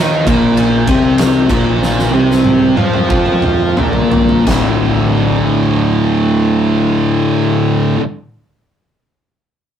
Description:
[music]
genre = stoner and doom metal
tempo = 85-100 BPM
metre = 4/4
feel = straight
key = D phrygian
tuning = A4 = 440 Hz
[part]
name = fuzz guitar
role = riff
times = 0.0-8.0 s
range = D2 to F4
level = -17 LUFS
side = equal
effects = distortion
[part]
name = thick fuzz guitar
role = riff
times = 0.0-8.0 s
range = D2 to F4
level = -17 LUFS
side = left 6 dB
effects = distortion
[part]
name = thick fuzz guitar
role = riff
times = 0.0-8.0 s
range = D2 to F4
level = -16 LUFS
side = right 4 dB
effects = distortion
[part]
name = fuzz picked electric bass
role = bass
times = 0.0-7.9 s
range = D1 to F2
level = -20 LUFS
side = equal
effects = overdrive, tube saturation
[part]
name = oversized low-tuned drum kit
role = drums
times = 0.3-4.6 s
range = kick drum, ride cymbal, snare drum, splash cymbal, toms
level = -17 LUFS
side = equal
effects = none
[sound]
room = moderate small room reverb, RT60 0.5 s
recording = rough rehearsal-room recording, tube saturation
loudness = -10 LUFS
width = side -9 dB against mid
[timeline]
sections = 0.0-4.5 A section; 4.5-7.3 B section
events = slowing down 0.0-4.5; drum fill 1.8-4.5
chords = 0.0 Bb5; 4.5 D5

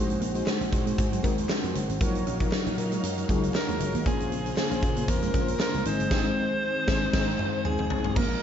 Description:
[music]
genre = 1980s-style pop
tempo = 117 BPM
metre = 4/4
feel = swing 55% on 16ths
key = unclear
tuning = A4 = 445 Hz
[part]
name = FM electric piano with tremolo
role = accompaniment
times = 0.0-8.4 s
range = Gb3 to C5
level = -31 LUFS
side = left 4 dB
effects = slapback echo
[part]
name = string machine, violins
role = sustained chords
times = 0.0-8.4 s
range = Db3 to F5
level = -36 LUFS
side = right 1 dB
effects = ensemble chorus
[part]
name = mellow electric guitar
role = riff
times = 0.0-8.3 s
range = Gb3 to Eb4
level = -36 LUFS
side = right 6 dB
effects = none
[part]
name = mellow synth brass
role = stabs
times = 0.0-7.3 s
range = C4 to Db5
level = -38 LUFS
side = right 2 dB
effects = chorus, slapback echo, ping-pong delay
[part]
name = vintage slap bass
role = bass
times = 0.0-8.4 s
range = Gb1 to Bb2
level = -32 LUFS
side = equal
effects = none
[part]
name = huge arena drum kit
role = drums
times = 0.1-8.3 s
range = crash cymbal, hi-hat, kick drum, snare drum, toms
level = -28 LUFS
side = equal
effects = none
[part]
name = group handclap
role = percussion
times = 0.5-5.7 s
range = none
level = barely audible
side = none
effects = none
[part]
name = bright alto saxophone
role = melody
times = 3.6-8.4 s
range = Ab4 to C5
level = -30 LUFS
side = equal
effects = slapback echo
[part]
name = glassy synth bell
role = second line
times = 7.7-8.4 s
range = Ab5 to Bb5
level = -43 LUFS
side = equal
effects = chorus
[sound]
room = wet scoring stage reverb, RT60 1.5 s, small room ambience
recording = big arena sound, nothing above 7.6 kHz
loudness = -24 LUFS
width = side -9 dB against mid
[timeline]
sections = 0.0-8.2 A section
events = band accent 6.1-8.2; drum fill 7.1-8.2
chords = 0.0 Ab7/Bb; 2.0 Ebmadd9/Bb; 4.1 Bbmadd9; 5.9 Ab

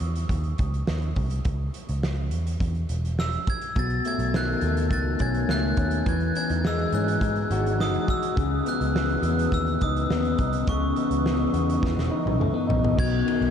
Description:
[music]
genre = indie pop, bedroom pop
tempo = 104 BPM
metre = 4/4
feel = straight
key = C# minor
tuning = A4 = 440 Hz
[part]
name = vintage muted picked electric bass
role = bass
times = 0.0-13.5 s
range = E1 to G#2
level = -27 LUFS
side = equal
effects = none
[part]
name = loose indie drum kit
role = drums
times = 0.0-13.5 s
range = crash cymbal, hi-hat, kick drum, ride cymbal, snare drum, toms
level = -29 LUFS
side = right 1 dB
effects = none
[part]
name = glockenspiel with brass mallets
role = melody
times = 3.2-13.5 s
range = C#6 to A6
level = -31 LUFS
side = right 1 dB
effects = wide subtle chorus
[part]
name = electric guitar through a small old amp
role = accompaniment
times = 3.8-13.5 s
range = B2 to F#4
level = -25 LUFS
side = left 3 dB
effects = wide subtle chorus, warbly pitch drift
[sound]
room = wet huge ambient reverb, RT60 8.1 s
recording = dreamy mix soaked in reverb, cassette tape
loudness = -22 LUFS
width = side -8 dB against mid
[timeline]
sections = 0.0-13.0 A section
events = drum fill 11.8-13.0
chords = 0.0 C#madd9; 3.8 B9; 6.1 Emaj9; 8.4 C#m9; 13.0 B

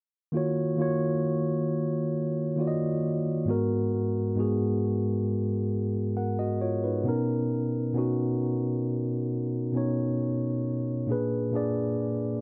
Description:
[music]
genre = R&B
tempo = 67 BPM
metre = 4/4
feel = straight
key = Eb minor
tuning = A4 = 438 Hz
[part]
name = mellow tine electric piano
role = solo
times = 0.3-12.4 s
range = Ab2 to Gb5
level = -28 LUFS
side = equal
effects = none
[sound]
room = moderate booth ambience, RT60 0.2 s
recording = none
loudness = -28 LUFS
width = mono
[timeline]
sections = 0.3-12.4 A section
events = none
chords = 0.3 Ebm9; 3.5 Abm9; 7.1 Bmaj9; 11.1 Bb7b9

